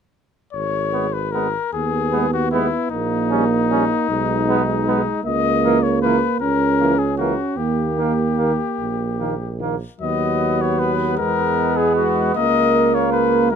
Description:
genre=classical, brass quintet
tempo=51 BPM (dotted quarters)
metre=6/8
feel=rubato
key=G# minor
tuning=A4 = 444 Hz
part: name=mellow trumpet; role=melody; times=0.5-13.6 s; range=D#4 to D#5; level=-22 LUFS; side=left 10 dB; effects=none
part: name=warm tuba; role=bass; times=0.5-13.6 s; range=G#1 to E2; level=-24 LUFS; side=right 4 dB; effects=none
part: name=warm flugelhorn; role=second line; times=0.9-13.6 s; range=A#3 to Db4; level=-23 LUFS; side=right 6 dB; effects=none
part: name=mellow French horn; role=accompaniment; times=0.9-13.6 s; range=D#3 to A#3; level=-24 LUFS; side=left 3 dB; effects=none
part: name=warm euphonium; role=accompaniment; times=1.7-13.6 s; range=G#3 to C#4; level=-22 LUFS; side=right 4 dB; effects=none
room=light reverb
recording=close, detailed microphones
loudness=-17 LUFS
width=side -7 dB against mid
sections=0.5-13.6 A section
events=none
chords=0.5 G#m; 2.9 Gdim/Bb; 4.1 G#m/B; 5.3 A#dim/C#; 7.6 D#; 10.0 B/D#; 11.2 E; 12.4 Bmaj9/C#

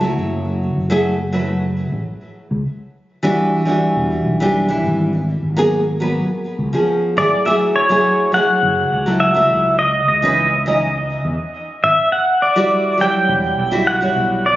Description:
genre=sunset chillout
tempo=103 BPM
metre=4/4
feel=straight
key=F# minor from 7.5 s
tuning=A4 = 440 Hz
part: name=nylon-string guitar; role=accompaniment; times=0.0-14.4 s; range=E3 to E5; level=-18 LUFS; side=equal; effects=auto-pan, ping-pong delay
part: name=fretless electric bass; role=bass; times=0.0-14.6 s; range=E1 to E2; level=-22 LUFS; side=equal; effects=tube saturation, analog chorus
part: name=pedal steel guitar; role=melody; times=7.2-14.6 s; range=C#5 to G5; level=-15 LUFS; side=equal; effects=digital delay
room=moderate lush hall reverb, RT60 2.4 s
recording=recorded on a phone in the room, studio reverb, nothing above 7.6 kHz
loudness=-14 LUFS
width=side -15 dB against mid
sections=0.0-7.5 A section; 7.5-14.6 B section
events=none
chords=0.0 F#m7; 2.8 Em9; 5.1 G#m9; 6.3 C#7; 7.5 F#m9; 9.8 C#madd9; 12.1 Em9

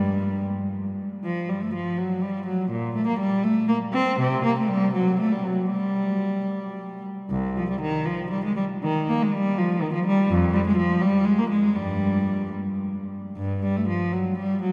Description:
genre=classical, baroque-style suite movement for unaccompanied cello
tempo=70-85 BPM (dotted quarters)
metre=6/8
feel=rubato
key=G minor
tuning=A4 = 440 Hz
part: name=clear cello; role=solo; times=0.0-14.7 s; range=C2 to C4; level=-24 LUFS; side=equal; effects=none
room=wet cathedral reverb, RT60 6.1 s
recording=heard from further back in the room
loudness=-24 LUFS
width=mono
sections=0.0-7.3 A section; 7.3-14.7 A section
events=none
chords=none

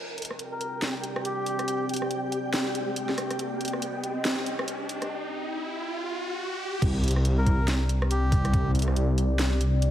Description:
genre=deep dubstep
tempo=140 BPM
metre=4/4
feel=swing 59% on 16ths, half-time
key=C minor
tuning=A4 = 440 Hz
part: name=deep dark ambient pad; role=sustained chords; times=0.0-9.9 s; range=C4 to Eb5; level=-34 LUFS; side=left 1 dB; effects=chorus, built-in reverb
part: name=riser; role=sound effects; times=0.0-6.8 s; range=none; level=-36 LUFS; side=equal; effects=none
part: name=flickering grainy texture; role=texture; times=0.0-5.1 s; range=G4 to G5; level=-35 LUFS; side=right 1 dB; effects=built-in reverb
part: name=garage drum kit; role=drums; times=0.2-9.9 s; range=crash cymbal, hi-hat, rim click, snare drum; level=-32 LUFS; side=equal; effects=overdrive
part: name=melodica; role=melody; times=0.5-1.9, 7.4-8.7 s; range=G4 to Bb4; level=-34 LUFS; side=left 1 dB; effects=low-pass filter, dub echo
part: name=dark detuned saw bass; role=bass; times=6.8-9.9 s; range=C2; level=-23 LUFS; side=equal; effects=none
part: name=electronic kick drum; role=drums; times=6.8-8.6 s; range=none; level=-25 LUFS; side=equal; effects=none
room=light reverb, digital ambience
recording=vinyl crackle, high-pass filter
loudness=-25 LUFS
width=side -12 dB against mid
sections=0.0-6.8 A section; 6.8-9.9 B section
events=build-up 0.0-6.8; riser 0.0-6.8; break 5.1-6.8; drop 6.8-9.9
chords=0.0 C5

